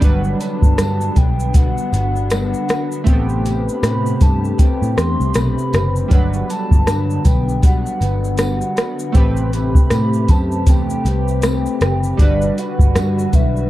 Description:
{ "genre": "indie pop, bedroom pop", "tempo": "79 BPM", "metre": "4/4", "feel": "swing 60% on 16ths", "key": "G major", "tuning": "A4 = 441 Hz", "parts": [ { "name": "hollow clarinet-like synth lead", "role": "melody", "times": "0.0-13.7 s", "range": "D5 to C6", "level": "-26 LUFS", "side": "equal", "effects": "lush chorus" }, { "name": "chorused retro synth keys", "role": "accompaniment", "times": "0.0-13.7 s", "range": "F#3 to B4", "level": "-27 LUFS", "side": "right 4 dB", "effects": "cassette tape" }, { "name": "electric guitar through a small old amp", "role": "accompaniment", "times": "0.0-13.7 s", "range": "G3 to B4", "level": "-24 LUFS", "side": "left 3 dB", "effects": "analog chorus, vibrato effect" }, { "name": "hollow soft pad", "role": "sustained chords", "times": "0.0-13.7 s", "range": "C3 to B4", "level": "-25 LUFS", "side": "left 1 dB", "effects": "ensemble chorus" }, { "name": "vintage muted picked electric bass", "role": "bass", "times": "0.0-13.7 s", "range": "F#1 to A2", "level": "-19 LUFS", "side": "equal", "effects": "none" }, { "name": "soft vintage rhythm box", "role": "drums", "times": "0.0-13.7 s", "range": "hi-hat, kick drum, rim click, shaker", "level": "-14 LUFS", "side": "equal", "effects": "overdrive" }, { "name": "tambourine", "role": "percussion", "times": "0.0-13.5 s", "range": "none", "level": "-43 LUFS", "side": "left 2 dB", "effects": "none" } ], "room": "digital ambience", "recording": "dark, warm production", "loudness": "-14 LUFS", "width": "side -15 dB against mid", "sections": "0.0-13.7 A section", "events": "none", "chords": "0.0 Gmaj7; 3.1 Am9; 6.1 Gmaj7; 9.1 Am9; 12.2 Gmaj7" }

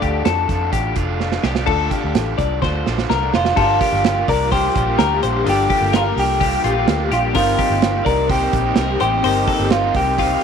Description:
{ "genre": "jangly indie pop", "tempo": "127 BPM", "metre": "4/4", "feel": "straight", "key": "G minor", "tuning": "A4 = 440 Hz", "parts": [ { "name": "chorused retro synth keys", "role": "accompaniment", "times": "0.0-10.4 s", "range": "C4 to Bb4", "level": "-26 LUFS", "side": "left 13 dB", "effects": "none" }, { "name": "raw garage guitar", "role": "accompaniment", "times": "0.0-10.4 s", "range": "G2 to Bb4", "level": "-26 LUFS", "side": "right 12 dB", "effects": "overdrive, spring reverb" }, { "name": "twelve-string electric guitar", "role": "arpeggios", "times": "0.0-10.4 s", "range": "F4 to D5", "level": "-22 LUFS", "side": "left 14 dB", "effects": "tape echo" }, { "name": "vintage muted fingered electric bass", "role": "bass", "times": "0.0-10.4 s", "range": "F1 to F2", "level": "-23 LUFS", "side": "equal", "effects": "none" }, { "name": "modern studio drum kit", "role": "drums", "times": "0.0-10.4 s", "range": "crash cymbal, hi-hat, kick drum, snare drum", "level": "-22 LUFS", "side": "right 4 dB", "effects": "none" }, { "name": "electric guitar through a small old amp", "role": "melody", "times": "3.4-10.4 s", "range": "F4 to Bb4", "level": "-19 LUFS", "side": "right 1 dB", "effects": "vibrato effect" }, { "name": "string machine, violins", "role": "sustained chords", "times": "3.6-10.4 s", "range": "G3 to G4", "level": "-28 LUFS", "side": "equal", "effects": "ensemble chorus" } ], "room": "studio reverb", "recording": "1960s-style stereo with parts hard left and right", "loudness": "-15 LUFS", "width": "side -7 dB against mid", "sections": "0.0-1.7 A section; 1.7-3.6 B section; 3.6-10.4 C section", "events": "drum fill 1.2-1.7, 2.6-3.6", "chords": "0.0 Dm; 3.6 Gm7; 7.4 Cm7/G" }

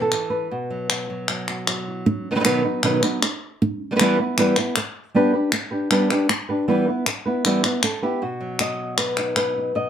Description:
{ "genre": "flamenco", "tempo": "156 BPM", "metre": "4/4", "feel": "straight", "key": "unclear", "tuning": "A4 = 440 Hz", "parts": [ { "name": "flamenco guitar", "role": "melody", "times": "0.0-9.9 s", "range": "B2 to D#5", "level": "-20 LUFS", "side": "right 1 dB", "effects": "none" }, { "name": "palmas hand claps", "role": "percussion", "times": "0.1-9.6 s", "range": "none", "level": "-23 LUFS", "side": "left 3 dB", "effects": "none" } ], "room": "moderate small room reverb, RT60 0.6 s", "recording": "none", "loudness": "-19 LUFS", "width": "side -9 dB against mid", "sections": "0.0-2.1 A section; 2.1-8.2 B section; 8.2-9.9 C section", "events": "none", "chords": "0.0 Asus2/B; 0.5 B5; 2.1 B; 3.6 Em; 5.1 G; 6.7 Em; 8.2 B" }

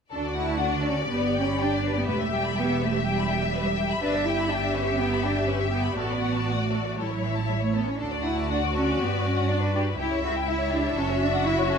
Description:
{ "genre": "quick classical-period movement for string orchestra", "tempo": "122 BPM", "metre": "4/4", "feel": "rubato", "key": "D major", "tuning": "A4 = 440 Hz", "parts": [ { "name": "rich studio violin section", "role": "melody", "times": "0.1-11.8 s", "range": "C#5 to E5", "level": "-32 LUFS", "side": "left 4 dB", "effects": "none" }, { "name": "rich studio violin section", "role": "second line", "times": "0.1-11.8 s", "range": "G4 to B5", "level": "-30 LUFS", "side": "left 6 dB", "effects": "none" }, { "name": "rich studio viola section", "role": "accompaniment", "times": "0.1-11.8 s", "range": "E4 to G4", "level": "-31 LUFS", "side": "left 1 dB", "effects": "none" }, { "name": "rich studio cello section", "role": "bass", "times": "0.1-11.8 s", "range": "E3 to F#4", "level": "-28 LUFS", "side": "right 3 dB", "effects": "none" }, { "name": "rich studio double bass section", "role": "bass", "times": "0.1-11.8 s", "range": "E1 to G2", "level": "-29 LUFS", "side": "right 3 dB", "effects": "none" } ], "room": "moderate scoring stage reverb, RT60 2.0 s", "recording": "none", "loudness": "-23 LUFS", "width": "side -6 dB against mid", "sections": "0.1-11.8 A section", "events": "none", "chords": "0.1 D; 1.1 G; 2.1 Em; 4.0 Em/G; 6.0 D/A; 7.0 A; 8.0 D; 9.0 Gmaj7; 10.0 C#dim; 11.0 F#m7" }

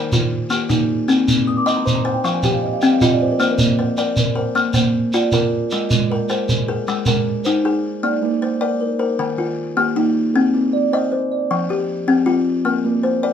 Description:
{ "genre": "southern african traditional, mbira-style interlocking cycle", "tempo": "104 BPM (dotted quarters)", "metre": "12/8", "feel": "straight", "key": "Bb mixolydian", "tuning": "A4 = 440 Hz", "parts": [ { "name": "buzzing kalimba", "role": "arpeggios", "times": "0.0-13.3 s", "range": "Eb3 to Eb5", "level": "-19 LUFS", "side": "left 4 dB", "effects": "none" }, { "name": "kalimba", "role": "arpeggios", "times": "0.0-13.3 s", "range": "Eb3 to Eb6", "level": "-21 LUFS", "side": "right 3 dB", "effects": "none" }, { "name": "shekere", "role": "percussion", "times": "0.1-7.6 s", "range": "none", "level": "-20 LUFS", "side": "right 2 dB", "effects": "none" } ], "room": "moderate studio ambience, RT60 0.5 s", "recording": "minimal, uncompressed stereo recording", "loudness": "-16 LUFS", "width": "side -8 dB against mid", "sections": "0.0-8.0 A section; 8.0-13.3 B section", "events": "kalimba fill 1.3-3.4", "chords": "0.0 Eb; 1.1 Cm; 2.2 F5; 3.4 Bb; 5.7 Ab; 8.0 Bb; 9.2 Eb; 10.3 Cm; 11.5 Fm; 12.7 Bb" }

